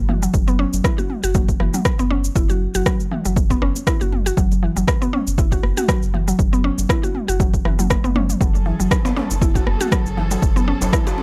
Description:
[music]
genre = afro house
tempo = 119 BPM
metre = 4/4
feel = swing 55% on 16ths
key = F# minor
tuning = A4 = 441 Hz
[part]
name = warm sub bass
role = bass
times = 0.0-10.9 s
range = F#1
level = -24 LUFS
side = equal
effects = tube saturation, sidechain pumping
[part]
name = mallet-like synth pluck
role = arpeggios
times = 0.1-11.2 s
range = E3 to F#4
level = -26 LUFS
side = equal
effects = chorus, sidechain pumping, tape echo
[part]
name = deep house drum kit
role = drums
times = 0.1-11.2 s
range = rim click, shaker, toms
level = -27 LUFS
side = equal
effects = overdrive
[part]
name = congas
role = percussion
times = 0.1-11.2 s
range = none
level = -31 LUFS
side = equal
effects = none
[part]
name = electronic kick drum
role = drums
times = 0.3-11.0 s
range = none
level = -22 LUFS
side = equal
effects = overdrive
[part]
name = warm studio string section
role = sustained chords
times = 8.4-11.2 s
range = F#3 to A4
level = -32 LUFS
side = equal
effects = sidechain pumping
[part]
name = djembe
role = percussion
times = 8.7-11.2 s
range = none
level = -34 LUFS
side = equal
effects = none
[sound]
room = small room ambience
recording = dry, gritty hardware recording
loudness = -19 LUFS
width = mono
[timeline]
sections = 0.0-11.2 A section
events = drum fill 7.7-8.4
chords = 0.0 F#m9

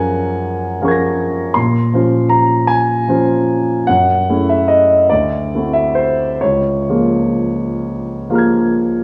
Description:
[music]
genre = classical, impressionist solo piano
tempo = 42-55 BPM (dotted quarters)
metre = 6/8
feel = rubato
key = Db major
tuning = A4 = 441 Hz
[part]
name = warm concert grand piano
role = solo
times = 0.0-9.0 s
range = Db2 to Bb6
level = -15 LUFS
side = equal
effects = none
[sound]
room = wet scoring stage reverb, RT60 1.6 s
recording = worn, warbling old tape, cassette tape, warbly pitch drift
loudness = -15 LUFS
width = mono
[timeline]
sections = 0.0-9.0 A section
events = none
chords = 0.0 Gbmaj9; 1.6 Bbm9; 3.9 Gbm9; 5.1 D9; 6.4 Db6

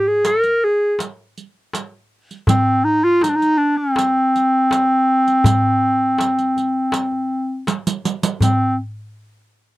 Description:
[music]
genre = Turkish makam ensemble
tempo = 81 BPM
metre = 4/4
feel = straight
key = C makam nihavent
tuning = A4 = 441 Hz
[part]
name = clear clarinet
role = melody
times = 0.0-8.8 s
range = C4 to Bb4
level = -15 LUFS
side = equal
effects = none
[part]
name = darbuka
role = percussion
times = 0.2-8.8 s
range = none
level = -20 LUFS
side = left 1 dB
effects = none
[part]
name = riq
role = percussion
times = 0.2-8.8 s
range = none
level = -23 LUFS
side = right 5 dB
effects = none
[sound]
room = light reverb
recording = dark, warm production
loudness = -15 LUFS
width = side -17 dB against mid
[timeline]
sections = 0.0-8.4 A section; 8.4-9.8 B section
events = drum fill 7.7-8.4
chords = none

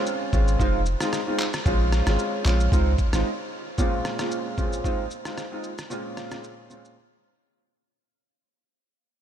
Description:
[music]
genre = afrobeats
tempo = 113 BPM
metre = 4/4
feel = swing 55% on 16ths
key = Bb minor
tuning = A4 = 440 Hz
[part]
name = clear grand piano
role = accompaniment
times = 0.0-7.0 s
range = Bb2 to F4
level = -27 LUFS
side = right 1 dB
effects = lush chorus
[part]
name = trip hop sampler-style drum kit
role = drums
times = 0.1-7.0 s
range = handclaps, kick drum, rim click, shaker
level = -28 LUFS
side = equal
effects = none
[part]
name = punchy sub bass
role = bass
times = 0.3-3.2 s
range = F1 to Db2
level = -22 LUFS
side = equal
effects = none
[sound]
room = light reverb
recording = none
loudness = -22 LUFS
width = side -10 dB against mid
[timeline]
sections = 0.0-3.8 A section; 3.8-8.0 B section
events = break 3.3-3.8, 7.0-8.0; fade-out 3.8-8.0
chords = 0.0 Bbm7 (rootless); 0.6 Fm7; 1.7 Bbm7; 2.7 Dbmaj7; 3.8 Bbm7; 4.8 Fm7; 5.9 Bbm7; 7.0 N.C.

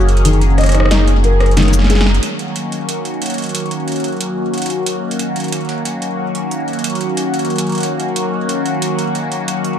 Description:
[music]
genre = IDM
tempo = 91 BPM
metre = 4/4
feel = straight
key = Eb minor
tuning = A4 = 440 Hz
[part]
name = phased analog pad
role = sustained chords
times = 0.0-9.8 s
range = Eb3 to Ab4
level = -18 LUFS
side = left 1 dB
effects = phaser, chorus
[part]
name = warm sub bass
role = bass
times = 0.0-2.2 s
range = Gb1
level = -12 LUFS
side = equal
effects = tube saturation
[part]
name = electro analog drum machine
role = drums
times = 0.1-9.8 s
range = cabasa, hi-hat, rim click, snare drum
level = -21 LUFS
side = right 2 dB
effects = overdrive, ping-pong delay
[part]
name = felt-muted upright piano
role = arpeggios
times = 0.3-2.0 s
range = Eb3 to Eb5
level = -19 LUFS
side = left 5 dB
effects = ping-pong delay
[sound]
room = light reverb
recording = dark, warm production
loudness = -14 LUFS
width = side -9 dB against mid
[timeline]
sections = 0.0-2.2 A section; 2.2-9.8 B section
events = drum fill 1.6-2.2; band accent 2.0-2.3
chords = 0.0 Gb6; 2.2 Ebm7

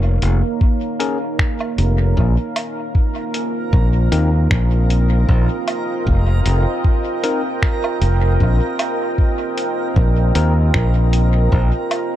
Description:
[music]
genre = ambient dub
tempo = 77 BPM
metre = 4/4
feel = swing 55% on 16ths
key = unclear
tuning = A4 = 441 Hz
[part]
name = deep dark ambient pad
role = sustained chords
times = 0.0-12.2 s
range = Bb3 to G5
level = -22 LUFS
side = right 2 dB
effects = chorus, built-in reverb
[part]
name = modern bright fingered electric bass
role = bass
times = 0.0-11.7 s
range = F1 to Eb2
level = -14 LUFS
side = equal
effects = none
[part]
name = lo-fi sampler-style drum kit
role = drums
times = 0.2-12.1 s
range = finger snaps, hi-hat, woodblock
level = -25 LUFS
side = right 1 dB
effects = small room ambience, dub echo
[part]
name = electronic kick drum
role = drums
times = 0.6-11.7 s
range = none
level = -17 LUFS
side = equal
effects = small room ambience
[part]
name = overdriven tine electric piano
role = stabs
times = 1.0-10.5 s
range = C4 to Bb4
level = -26 LUFS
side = left 5 dB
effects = dub echo
[part]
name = backwards swelling texture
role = texture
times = 3.1-12.2 s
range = Bb4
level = -29 LUFS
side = right 4 dB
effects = built-in reverb
[sound]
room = digital ambience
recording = dark, warm production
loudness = -15 LUFS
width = side -12 dB against mid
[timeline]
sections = 0.0-12.2 A section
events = none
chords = 0.0 Bbm; 2.2 Cm7

